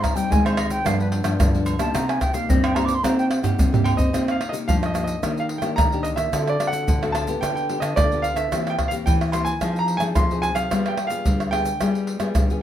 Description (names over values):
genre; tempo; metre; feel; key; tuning
samba and choro; 110 BPM; 4/4; straight; C minor; A4 = 439 Hz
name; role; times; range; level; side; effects
bright wooden flute; second line; 0.0-3.3 s; B4 to D6; -26 LUFS; right 1 dB; none
nylon-string guitar; accompaniment; 0.0-12.6 s; G2 to A4; -28 LUFS; left 5 dB; none
egg shaker, surdo, pandeiro, tamborim and agogo bells; percussion; 0.0-12.6 s; none; -23 LUFS; equal; none
nylon-string guitar; bass; 0.3-12.6 s; G2 to C4; -25 LUFS; right 1 dB; none
warm baby grand piano; melody; 3.8-12.6 s; D5 to C6; -25 LUFS; right 2 dB; none
room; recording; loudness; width
moderate studio reverb, RT60 0.6 s; minimal, uncompressed stereo recording; -19 LUFS; side -11 dB against mid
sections
0.0-4.1 A section; 4.1-12.6 B section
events
flute solo 0.0-4.1; drum fill 3.3-4.1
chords
0.0 Abmaj7; 0.9 G7; 1.9 Cm7; 5.2 Ebmaj7; 6.3 D7; 7.4 G7/D; 8.5 C7/E; 9.6 Fm7; 10.7 G7b9